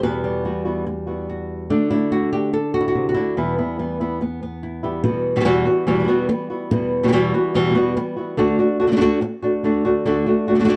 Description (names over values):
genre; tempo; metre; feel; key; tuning
flamenco; 144 BPM; 4/4; straight; E minor; A4 = 440 Hz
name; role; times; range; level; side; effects
flamenco guitar; melody; 0.0-10.8 s; E2 to B4; -21 LUFS; equal; plate reverb
flamenco guitar; stabs; 0.0-10.8 s; E2 to F#4; -26 LUFS; equal; none
room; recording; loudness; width
moderate studio reverb, RT60 0.5 s; dark, warm production; -20 LUFS; mono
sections
0.0-5.0 A section; 5.0-10.8 B section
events
none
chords
0.0 Emadd9; 1.7 D; 3.4 Em; 5.0 Emadd9; 8.4 D